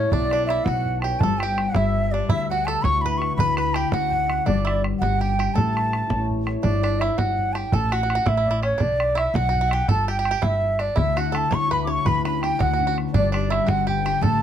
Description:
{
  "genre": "celtic folk, Celtic jig",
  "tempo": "111 BPM (dotted quarters)",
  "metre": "6/8",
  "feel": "straight",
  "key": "unclear",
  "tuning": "A4 = 439 Hz",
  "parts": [
    { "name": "bansuri", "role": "melody", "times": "0.0-14.4 s", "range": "C#5 to D6", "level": "-24 LUFS", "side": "right 1 dB", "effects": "plate reverb" },
    { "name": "bluegrass banjo", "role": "second line", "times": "0.0-14.4 s", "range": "C#4 to C#5", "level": "-31 LUFS", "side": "right 6 dB", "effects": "none" },
    { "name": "mellow accordion", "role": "second line", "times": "0.0-14.4 s", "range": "C#5 to C#6", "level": "-32 LUFS", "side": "equal", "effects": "none" },
    { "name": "concert harp", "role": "accompaniment", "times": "0.0-14.4 s", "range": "D3 to D5", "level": "-27 LUFS", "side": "left 6 dB", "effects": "none" },
    { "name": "upright bass", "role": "bass", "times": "0.0-14.4 s", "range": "G1 to D2", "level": "-26 LUFS", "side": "equal", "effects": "none" },
    { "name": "bodhran", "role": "percussion", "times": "0.1-14.4 s", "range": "none", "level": "-26 LUFS", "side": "right 2 dB", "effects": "none" }
  ],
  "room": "light reverb",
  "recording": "none",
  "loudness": "-19 LUFS",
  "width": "side -9 dB against mid",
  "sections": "0.0-6.6 A section; 6.6-14.4 A section",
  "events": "none",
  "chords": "0.1 Bmadd9; 1.2 G; 2.3 Dadd9; 3.4 Bmadd9/D; 4.5 G; 5.6 A; 6.6 G5; 7.7 A5; 8.8 Bm; 9.9 A7sus4/G; 11.0 Dadd9; 12.1 Bmadd9/D; 13.1 G",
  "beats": "| 0.12 0.66 | 1.21 1.75 | 2.29 2.84 | 3.38 3.92 | 4.47 5.01 | 5.55 6.10 | 6.64 7.18 | 7.72 8.27 | 8.81 9.35 | 9.89 10.43 | 10.97 11.51 | 12.05 12.60 | 13.14 13.68 | 14.22"
}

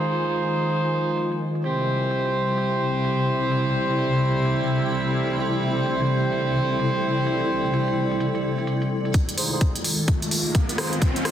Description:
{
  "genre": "bass house",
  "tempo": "128 BPM",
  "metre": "4/4",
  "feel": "swing 62% on 16ths",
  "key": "unclear",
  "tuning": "A4 = 440 Hz",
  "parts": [
    { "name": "sweeping resonant pad", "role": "sustained chords", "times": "0.0-11.3 s", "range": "C3 to F4", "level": "-27 LUFS", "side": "left 1 dB", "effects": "chorus, sidechain pumping" },
    { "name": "warm horn section", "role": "stabs", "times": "0.0-11.3 s", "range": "C4 to C5", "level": "-25 LUFS", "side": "right 2 dB", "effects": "sidechain pumping, low-pass filter, tape echo" },
    { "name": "granular cloud pad", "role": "texture", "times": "0.0-11.3 s", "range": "C3 to Ab5", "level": "-27 LUFS", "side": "equal", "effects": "built-in reverb, sidechain pumping" },
    { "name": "garage drum kit", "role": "drums", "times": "0.1-11.3 s", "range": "hi-hat, rim click", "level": "-29 LUFS", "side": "equal", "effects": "high-pass filter on hats, low-pass filter on hats, high-pass filter on cymbals, low-pass filter on cymbals, soft clipping on snare, high-pass filter on snare, low-pass filter on snare, high-pass filter on room, low-pass filter on room" },
    { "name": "electronic kick drum", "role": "drums", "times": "9.1-11.1 s", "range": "none", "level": "-22 LUFS", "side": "equal", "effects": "none" },
    { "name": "riser", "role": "sound effects", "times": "9.9-11.3 s", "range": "none", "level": "-31 LUFS", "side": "equal", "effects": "none" }
  ],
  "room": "moderate lush hall reverb, RT60 2.2 s",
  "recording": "dense, heavily limited modern master",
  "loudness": "-21 LUFS",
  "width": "side -10 dB against mid",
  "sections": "0.0-9.1 A section; 9.1-11.3 B section",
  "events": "build-up 9.1-11.3; filter sweep on horn section 9.1-11.3; riser 9.9-11.3",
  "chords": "0.0 Fm7; 1.6 C; 9.1 Fm7",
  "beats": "0.24 0.70 1.17 | 1.64 2.11 2.58 3.05 | 3.52 3.99 4.45 4.92 | 5.39 5.86 6.33 6.80 | 7.27 7.74 8.20 8.67 | 9.14 9.61 10.08 10.55 | 11.02"
}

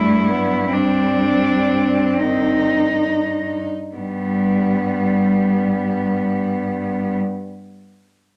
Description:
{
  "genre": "classical, lyrical piece for cello ensemble",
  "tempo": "32-46 BPM (dotted quarters)",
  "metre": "6/8",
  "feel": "rubato",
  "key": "G major",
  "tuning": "A4 = 439 Hz",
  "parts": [
    { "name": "rich cello", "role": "melody", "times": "0.0-7.2 s", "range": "G3 to E4", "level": "-23 LUFS", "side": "equal", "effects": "none" },
    { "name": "rich cello", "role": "second line", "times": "0.0-7.1 s", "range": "A3 to Eb4", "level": "-23 LUFS", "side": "equal", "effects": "none" },
    { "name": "rich cello", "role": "accompaniment", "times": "0.0-7.2 s", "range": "Eb3 to G3", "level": "-28 LUFS", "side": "equal", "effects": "none" },
    { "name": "clear cello", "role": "bass", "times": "0.0-7.2 s", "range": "G2", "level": "-28 LUFS", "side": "equal", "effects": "none" }
  ],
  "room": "moderate stone room reverb, RT60 1.0 s",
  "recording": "none",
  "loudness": "-19 LUFS",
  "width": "mono",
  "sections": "0.0-4.0 A section; 4.0-7.5 B section",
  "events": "slowing down 0.0-4.0",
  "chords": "0.0 G; 0.7 Cm/G; 4.0 G",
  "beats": "| 0.74 2.20 | 3.96 5.72"
}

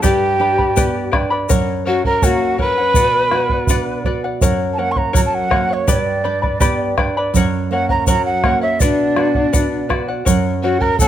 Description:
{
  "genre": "andean folk, Andean ensemble",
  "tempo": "82 BPM",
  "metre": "2/4",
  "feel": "straight",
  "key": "unclear",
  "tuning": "A4 = 436 Hz",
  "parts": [
    { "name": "breathy reedy large quena", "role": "melody", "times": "0.0-11.1 s", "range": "C#5 to C#6", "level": "-19 LUFS", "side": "right 3 dB", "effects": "none" },
    { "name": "breathy bright pan flute", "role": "second line", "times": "0.0-4.0, 8.8-11.1 s", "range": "D4 to B4", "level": "-19 LUFS", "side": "left 5 dB", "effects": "none" },
    { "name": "charango", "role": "accompaniment", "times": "0.0-11.1 s", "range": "G4 to B5", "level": "-22 LUFS", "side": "left 5 dB", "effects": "none" },
    { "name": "nylon-string guitar", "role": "accompaniment", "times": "0.0-11.1 s", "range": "F#2 to D5", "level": "-22 LUFS", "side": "right 5 dB", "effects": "none" },
    { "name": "bombo", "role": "percussion", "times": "0.0-11.1 s", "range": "none", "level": "-19 LUFS", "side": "right 1 dB", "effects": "none" },
    { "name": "tube shaker", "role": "percussion", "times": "0.0-11.1 s", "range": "none", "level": "-25 LUFS", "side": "left 8 dB", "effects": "none" }
  ],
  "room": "light reverb",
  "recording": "close, detailed microphones",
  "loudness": "-14 LUFS",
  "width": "side -11 dB against mid",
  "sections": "0.0-4.4 A section; 4.4-11.1 A section",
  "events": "nylon-string guitar fill 3.3-4.4",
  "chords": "0.0 G; 1.5 F#; 3.0 Bm; 4.4 F#; 5.9 G; 7.3 F#; 8.8 Bm; 10.3 F#",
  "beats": "| 0.04 0.77 | 1.50 2.23 | 2.96 3.69 | 4.42 5.15 | 5.88 6.61 | 7.34 8.07 | 8.80 9.53 | 10.26 10.99"
}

